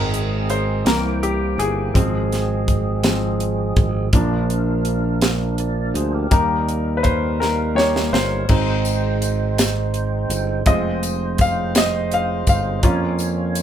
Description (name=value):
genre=slow gospel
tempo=55 BPM (dotted quarters)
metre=6/8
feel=straight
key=Ab major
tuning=A4 = 440 Hz
part: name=clear concert grand piano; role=accompaniment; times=0.0-13.6 s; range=Eb3 to F5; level=-23 LUFS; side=left 2 dB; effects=none
part: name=tonewheel organ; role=sustained chords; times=0.0-13.6 s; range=Db3 to G5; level=-25 LUFS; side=right 4 dB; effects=slow rotary speaker, overdrive, chorus vibrato
part: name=modern bright fingered electric bass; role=bass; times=0.0-13.6 s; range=F1 to F2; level=-22 LUFS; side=equal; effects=none
part: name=tight funk drum kit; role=drums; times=0.1-13.6 s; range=crash cymbal, hi-hat, kick drum, snare drum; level=-20 LUFS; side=equal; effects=none
part: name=tambourine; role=percussion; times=8.8-13.6 s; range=none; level=-30 LUFS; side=left 5 dB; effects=none
room=light reverb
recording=band playing live in one room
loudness=-17 LUFS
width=side -10 dB against mid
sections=0.0-13.6 A section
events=grand piano solo 0.0-13.6; drum fill 7.4-8.5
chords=0.0 Ab; 0.9 C7; 2.0 Fm/Ab; 4.1 Bb; 6.3 Eb; 8.5 Ab; 10.7 Fm; 12.8 Bbm/F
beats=0.86 | 1.95 3.04 | 4.14 5.23 | 6.32 7.41 | 8.49 9.58 | 10.67 11.75 | 12.84